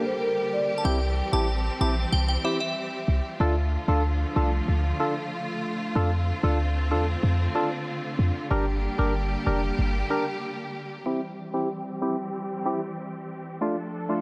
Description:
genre	dancehall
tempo	94 BPM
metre	4/4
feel	straight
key	unclear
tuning	A4 = 440 Hz
part	percussive organ stab	accompaniment	0.0-14.2 s	A3 to Bb4	-32 LUFS	equal	chorus, low-pass filter
part	warm symphonic string section	sustained chords	0.0-14.2 s	D3 to A4	-34 LUFS	equal	low-pass filter
part	marimba with soft mallets	melody	0.1-0.7 s	Bb4 to D5	-31 LUFS	equal	none
part	glassy synth bell	second line	0.8-3.8 s	E5 to A5	-33 LUFS	equal	chorus, phaser, digital delay
part	warm 808-style bass	bass	0.8-10.0 s	F1 to F2	-27 LUFS	equal	none
room	light reverb, small room ambience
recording	none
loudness	-27 LUFS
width	mono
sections	0.0-11.1 A section; 11.1-14.2 B section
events	none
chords	0.0 Gm; 0.8 C; 3.4 Dm; 6.0 F6; 8.5 Gm; 11.1 C; 13.6 Dm

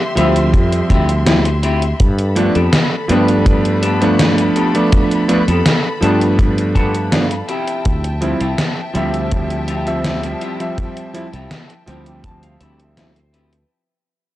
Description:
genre	vaporwave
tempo	82 BPM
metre	4/4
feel	straight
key	D dorian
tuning	A4 = 440 Hz
part	rich studio string section	sustained chords	0.0-13.7 s	F3 to C6	-25 LUFS	left 1 dB	vintage 12-bit sampler grit
part	warm electric grand piano	accompaniment	0.2-13.1 s	F3 to E5	-17 LUFS	right 1 dB	lush chorus, vintage 12-bit sampler grit, analog delay
part	semi-hollow electric guitar	riff	0.2-13.7 s	B3 to A5	-24 LUFS	left 2 dB	lush chorus, vintage 12-bit sampler grit, analog delay
part	sustaining fretless electric bass	bass	0.2-13.6 s	C2 to G2	-18 LUFS	equal	none
part	gated 80s digital drum machine	drums	0.2-13.7 s	hi-hat, snare drum	-18 LUFS	equal	gated reverb, gated reverb snare, small room reverb
part	kick drum	drums	0.5-12.4 s	none	-15 LUFS	equal	small room reverb
room	studio reverb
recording	dry, gritty hardware recording, cassette tape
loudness	-13 LUFS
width	side -15 dB against mid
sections	0.0-13.7 A section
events	fade-out 5.9-13.7; clean electric guitar fill 6.4-7.9, 11.5-13.7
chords	0.0 Dm11; 2.0 G9; 7.5 Dm11

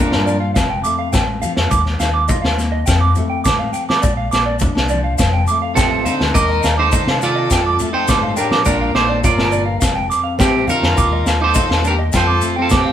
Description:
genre	highlife guitar band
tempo	104 BPM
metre	4/4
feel	straight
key	F mixolydian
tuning	A4 = 439 Hz
part	electric guitar at the edge of break-up	melody	0.0-0.4, 5.8-12.9 s	C4 to Eb5	-19 LUFS	right 2 dB	none
part	dark violin	second line	0.0-0.4, 5.8-12.9 s	C4 to Bb4	-26 LUFS	left 3 dB	none
part	nylon-string guitar	accompaniment	0.0-12.9 s	F2 to F4	-24 LUFS	left 4 dB	none
part	fingered electric bass	bass	0.1-12.9 s	F1 to F3	-21 LUFS	equal	none
part	vintage drum kit	drums	0.1-12.9 s	kick drum, snare drum	-19 LUFS	equal	none
part	agogo bells	percussion	0.1-12.9 s	none	-27 LUFS	left 1 dB	none
part	electric guitar through a small old amp	arpeggios	0.3-12.9 s	D5 to D6	-20 LUFS	right 3 dB	none
part	congas	percussion	0.3-12.8 s	none	-27 LUFS	equal	none
part	maracas	percussion	0.3-12.8 s	none	-28 LUFS	left 4 dB	none
room	moderate stone room reverb, RT60 1.3 s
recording	band playing live in one room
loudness	-14 LUFS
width	side -10 dB against mid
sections	0.0-12.9 A section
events	none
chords	0.0 Bb; 0.6 Fadd9; 1.7 Ebsus2; 2.9 Fadd9; 4.0 Bb; 5.2 Fadd9; 6.3 Ebsus2; 7.5 Fadd9; 8.7 Bb; 9.8 Fadd9; 11.0 Ebsus2; 12.1 Fadd9

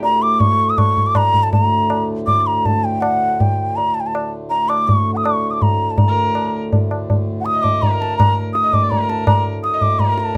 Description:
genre	indian classical, Hindustani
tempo	163 BPM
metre	3/4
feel	straight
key	unclear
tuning	A4 = 442 Hz
part	mellow bansuri	melody	0.0-10.4 s	F#5 to Eb6	-19 LUFS	equal	none
part	hand-pumped harmonium	drone	0.0-10.4 s	D2 to A2	-27 LUFS	equal	none
part	tabla	percussion	0.0-10.4 s	none	-21 LUFS	equal	none
part	clear sarangi	second line	6.1-10.4 s	Bb4 to Eb5	-31 LUFS	equal	none
room	light reverb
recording	none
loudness	-17 LUFS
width	mono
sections	0.0-1.5 A section; 1.5-10.4 B section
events	speeding up 0.0-10.4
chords	none

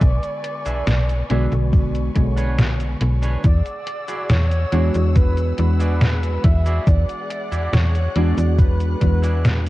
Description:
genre	vaporwave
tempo	70 BPM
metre	4/4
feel	straight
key	unclear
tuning	A4 = 440 Hz
part	warm velvety synth lead	melody	0.0-9.7 s	B4 to E5	-28 LUFS	equal	chorus, tape echo
part	warbly lo-fi synth keys	accompaniment	0.0-9.7 s	D3 to D5	-26 LUFS	equal	wide subtle chorus, analog delay
part	warm studio string section	sustained chords	0.0-9.7 s	G#4 to F#6	-37 LUFS	left 2 dB	none
part	slap-like FM bass	bass	0.0-9.7 s	B1 to E2	-19 LUFS	equal	none
part	detuned 8-bit digital drum machine	drums	0.0-9.7 s	cabasa, hi-hat, snare drum	-21 LUFS	equal	overdrive, gated reverb
part	electronic kick drum	drums	0.0-9.2 s	none	-16 LUFS	equal	overdrive
part	clean electric guitar	riff	0.4-9.4 s	D4 to E5	-33 LUFS	right 3 dB	lush chorus, analog delay
room	little or no reverb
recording	cassette tape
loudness	-16 LUFS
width	side -17 dB against mid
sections	0.0-9.7 A section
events	none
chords	0.0 Bm69; 3.4 E9

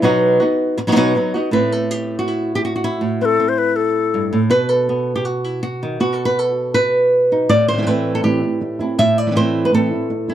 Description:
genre	flamenco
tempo	161 BPM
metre	4/4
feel	straight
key	unclear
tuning	A4 = 443 Hz
part	flamenco guitar	melody	0.0-10.3 s	G2 to E5	-16 LUFS	right 1 dB	none
part	wooden flute	second line	3.2-4.4 s	A4 to C5	-16 LUFS	left 7 dB	none
part	flamenco guitar	stabs	7.5-10.3 s	A2 to E4	-19 LUFS	right 2 dB	none
room	little or no reverb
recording	dry, close 1970s-style studio recording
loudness	-15 LUFS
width	side -11 dB against mid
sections	0.0-1.5 A section; 1.5-10.3 B section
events	none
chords	0.0 B; 1.5 Am; 4.5 B5; 7.5 Am

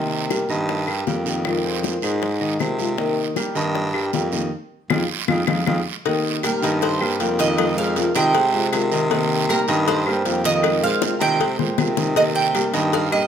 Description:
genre	latin, Cuban son and guajira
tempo	157 BPM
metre	4/4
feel	straight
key	C minor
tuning	A4 = 439 Hz
part	nylon-string guitar	accompaniment	0.0-13.3 s	C3 to G4	-25 LUFS	left 3 dB	none
part	warm concert grand piano	arpeggios	0.0-13.3 s	Eb3 to Eb5	-25 LUFS	equal	none
part	raspy baritone saxophone	bass	0.0-13.3 s	F2 to C3	-24 LUFS	right 1 dB	none
part	bongos and cowbell	percussion	0.1-13.1 s	none	-26 LUFS	left 8 dB	none
part	claves	percussion	0.3-13.3 s	none	-31 LUFS	left 4 dB	none
part	guiro	percussion	0.3-13.3 s	none	-31 LUFS	right 10 dB	none
part	Cuban tres	melody	6.5-13.3 s	Bb4 to G5	-22 LUFS	right 4 dB	none
room	moderate large studio reverb, RT60 0.9 s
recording	none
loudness	-18 LUFS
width	side -8 dB against mid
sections	0.0-6.0 A section; 6.0-13.3 B section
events	band accent 4.5-6.0; drum fill 11.0-12.2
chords	0.0 Cm7; 1.5 Fm7; 3.0 Cm7; 4.5 Fm7; 6.0 Cm7; 7.6 Fm9; 9.1 Cm7; 10.6 Fm9; 12.2 Cm7

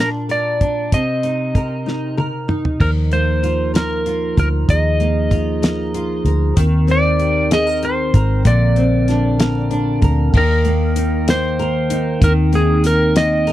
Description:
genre	six-eight pop ballad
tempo	64 BPM (dotted quarters)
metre	6/8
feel	straight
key	Eb major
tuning	A4 = 439 Hz
part	clean lap steel guitar	melody	0.0-13.5 s	Ab4 to Eb5	-20 LUFS	equal	none
part	nylon-string guitar	accompaniment	0.0-13.5 s	Bb2 to Bb4	-20 LUFS	equal	double-tracked left and right
part	damped 70s drum kit	drums	0.3-13.5 s	crash cymbal, hi-hat, kick drum, snare drum, toms	-17 LUFS	equal	none
part	pipe organ, stopped flute	sustained chords	2.8-13.5 s	D3 to G5	-23 LUFS	equal	none
part	vintage muted fingered electric bass	bass	2.8-13.5 s	Ab1 to Eb2	-18 LUFS	equal	none
room	little or no reverb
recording	dry, close 1970s-style studio recording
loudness	-14 LUFS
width	side -14 dB against mid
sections	0.0-2.8 A section; 2.8-10.3 B section; 10.3-13.5 C section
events	drum fill 1.9-2.8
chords	0.0 Bb; 0.9 Cm7; 2.8 Bbsus4; 6.6 Cm7/Eb; 8.5 Bbadd9; 10.3 Eb

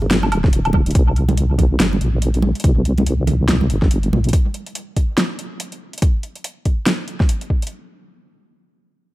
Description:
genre	deep dubstep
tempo	142 BPM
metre	4/4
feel	swing 58% on 16ths, half-time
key	unclear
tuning	A4 = 442 Hz
part	deep soft wobble bass	bass	0.0-4.3 s	D1 to C2	-17 LUFS	equal	chorus, tube saturation
part	bongos and congas	percussion	0.0-4.2 s	none	-25 LUFS	right 3 dB	dub echo
part	deep house drum kit	drums	0.1-7.7 s	hi-hat, snare drum, woodblock	-21 LUFS	equal	analog delay
part	electronic kick drum	drums	0.4-7.6 s	none	-16 LUFS	equal	none
room	little or no reverb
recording	echo-heavy mix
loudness	-15 LUFS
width	side -17 dB against mid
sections	0.0-7.7 A section; 7.7-9.1 B section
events	none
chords	none

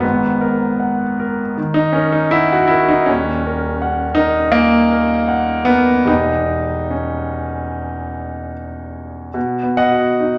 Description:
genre	classical, impressionist solo piano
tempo	72-83 BPM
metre	4/4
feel	rubato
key	unclear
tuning	A4 = 440 Hz
part	warm concert grand piano	solo	0.0-10.4 s	D#1 to B5	-17 LUFS	equal	none
room	wet recital hall reverb, RT60 1.5 s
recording	none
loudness	-17 LUFS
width	mono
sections	0.0-9.4 A section; 9.4-10.4 B section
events	none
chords	0.0 G#m9; 3.1 D#m7; 6.1 Em6; 9.4 B

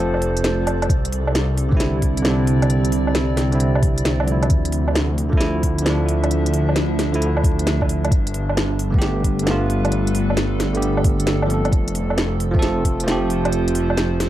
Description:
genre	future garage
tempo	133 BPM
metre	4/4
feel	swing 67% on 16ths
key	unclear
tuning	A4 = 439 Hz
part	bell-like tine electric piano	accompaniment	0.0-14.3 s	D3 to A4	-23 LUFS	right 1 dB	sidechain pumping, dub echo
part	warbly tape-like pad	sustained chords	0.0-14.3 s	C3 to E5	-26 LUFS	right 1 dB	chorus, built-in reverb, phaser, sidechain pumping
part	swelling detuned saw bass	bass	0.0-14.3 s	F1 to D2	-22 LUFS	equal	sidechain pumping
part	backwards swelling texture	texture	0.1-0.9 s	D5	-41 LUFS	equal	none
part	organic electronic drum kit	drums	0.1-14.3 s	hi-hat, snare drum, woodblock	-24 LUFS	equal	overdrive
part	electronic kick drum	drums	0.9-13.0 s	none	-19 LUFS	equal	overdrive
room	light reverb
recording	vinyl crackle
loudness	-17 LUFS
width	side -13 dB against mid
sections	0.9-14.3 A section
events	break 0.0-0.9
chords	0.0 F; 0.9 Cadd9; 4.5 Dmadd9; 8.1 Gadd9; 11.7 F

